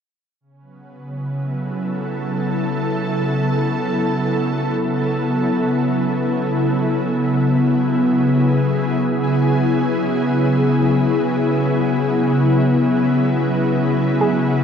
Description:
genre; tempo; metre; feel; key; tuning
ambient; free time; none; none; unclear; A4 = 440 Hz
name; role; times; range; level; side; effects
ethereal airy pad; sustained chords; 1.0-14.6 s; C#3 to A4; -17 LUFS; left 1 dB; ensemble chorus, built-in reverb, shimmer reverb
analog drone; drone; 3.6-14.6 s; B3; -23 LUFS; right 1 dB; chorus
soft round pluck; arpeggios; 14.2-14.6 s; G#4; -21 LUFS; right 3 dB; chorus
room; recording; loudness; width
wet cathedral reverb, RT60 5.3 s; worn, warbling old tape, cassette tape, warbly pitch drift; -16 LUFS; side -7 dB against mid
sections
0.4-14.6 A section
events
none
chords
0.4 B5; 7.0 C#m

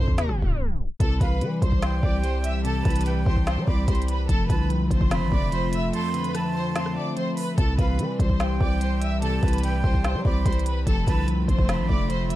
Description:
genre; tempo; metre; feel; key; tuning
hip hop, trap; 146 BPM; 4/4; half-time; C major; A4 = 439 Hz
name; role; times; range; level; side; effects
warm studio violin section; melody; 0.0-12.4 s; A4 to E6; -32 LUFS; equal; ping-pong delay
semi-hollow electric guitar; accompaniment; 0.0-12.4 s; F2 to C5; -29 LUFS; left 3 dB; spring reverb
growling 808-style bass; bass; 0.0-12.4 s; F1 to G3; -25 LUFS; equal; none
organic electronic drum kit; drums; 0.1-12.4 s; hi-hat, kick drum, rim click, snare drum; -24 LUFS; equal; overdrive
hollow soft pad; sustained chords; 1.0-12.4 s; D3 to G4; -34 LUFS; right 1 dB; chorus
breathy jazz flute; second line; 1.2-12.4 s; F5 to C6; -34 LUFS; right 5 dB; ping-pong delay
room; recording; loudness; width
little or no reverb; dark, warm production, vinyl crackle, tape stop; -21 LUFS; side -15 dB against mid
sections
0.0-1.0 A section; 1.0-12.4 B section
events
tape stop 0.2-1.0; break 5.9-7.6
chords
0.0 F6; 1.0 C; 4.3 F6; 7.6 C; 10.9 F6

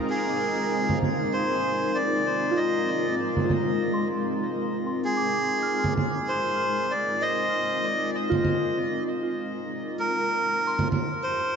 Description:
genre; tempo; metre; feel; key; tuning
ambient dub; 97 BPM; 4/4; swing 57% on 16ths; F dorian; A4 = 440 Hz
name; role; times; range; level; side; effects
granular cloud pad; sustained chords; 0.0-11.6 s; F2 to C5; -29 LUFS; left 1 dB; built-in reverb
soft synth bell; arpeggios; 0.0-11.6 s; F4 to F6; -32 LUFS; right 1 dB; chorus, low-pass filter, tape echo
melodica; melody; 0.1-11.6 s; Ab4 to Eb5; -26 LUFS; equal; tape echo
congas; drums; 0.9-11.1 s; none; -28 LUFS; right 3 dB; overdrive, low-pass filter on perc, low-pass filter on snare, low-pass filter on room, dub echo
room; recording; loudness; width
wet huge ambient reverb, RT60 4.4 s; nothing above 7.6 kHz; -23 LUFS; side -6 dB against mid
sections
0.1-11.6 A section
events
filter sweep on drum 0.1-11.6; filter sweep on synth bell 0.1-11.6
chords
0.1 Fm7; 10.0 C5/F

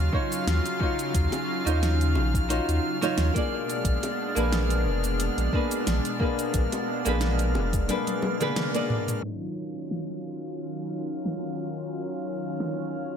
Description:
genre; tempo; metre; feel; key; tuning
sunset chillout; 89 BPM; 4/4; swing 54% on 16ths; Eb minor; A4 = 440 Hz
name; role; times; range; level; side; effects
flamenco guitar; accompaniment; 0.0-13.2 s; Gb3 to D5; -29 LUFS; moving between left 6 dB and right 4 dB; auto-pan, ping-pong delay
lush unison pad; sustained chords; 0.0-13.2 s; Cb3 to F4; -31 LUFS; equal; chorus
warm sub bass; bass; 0.0-7.9 s; F1 to Eb2; -25 LUFS; equal; none
drifting glass-harmonics texture; texture; 0.0-13.2 s; F6; -36 LUFS; right 2 dB; chorus, built-in reverb
electronic kick drum; drums; 0.1-7.9 s; none; -28 LUFS; equal; none
smooth R&B drum kit; drums; 0.3-12.8 s; cabasa, hi-hat, snare drum, toms; -32 LUFS; equal; low-pass filter on hats, low-pass filter on perc, low-pass filter on snare, low-pass filter on toms, low-pass filter on room
bongos; percussion; 1.3-8.4 s; none; -36 LUFS; equal; none
room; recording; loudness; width
light reverb, digital ambience; low-pass filter; -24 LUFS; side -8 dB against mid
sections
0.0-9.2 A section; 9.2-13.2 B section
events
drum fill 7.9-9.2; band accent 8.6-8.9; filter sweep on drum 9.2-13.2; filter sweep 9.2-13.2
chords
0.0 Ebm9; 3.5 Bb7b9; 9.2 Ebm9

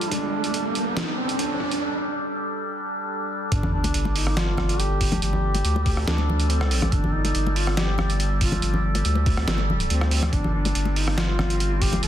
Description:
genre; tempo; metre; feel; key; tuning
deep dubstep; 141 BPM; 4/4; half-time; unclear; A4 = 440 Hz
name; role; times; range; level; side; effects
warm duduk; melody; 0.0-12.1 s; C4 to A4; -31 LUFS; equal; dub echo
overtone-sweeping drone; sustained chords; 0.0-12.1 s; G3 to D5; -30 LUFS; equal; chorus, built-in reverb
saturated sub bass; bass; 0.0-12.1 s; G1 to D2; -24 LUFS; equal; high-pass filter
trip hop sampler-style drum kit; drums; 0.0-12.1 s; hi-hat, rim click, snare drum; -28 LUFS; right 1 dB; none
riser and sub drop; sound effects; 0.0-5.2 s; none; -29 LUFS; right 1 dB; none
electronic kick drum; drums; 0.1-11.9 s; none; -25 LUFS; equal; high-pass filter on kick
congas; percussion; 3.6-12.0 s; none; -30 LUFS; left 2 dB; none
room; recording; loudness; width
light reverb, digital ambience; dense, heavily limited modern master; -21 LUFS; side -11 dB against mid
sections
0.0-3.5 A section; 3.5-12.1 B section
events
build-up 0.0-3.5; riser 0.0-1.8; break 1.8-3.5; drop 3.5-12.1; impact 3.5-5.2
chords
0.0 Gsus2

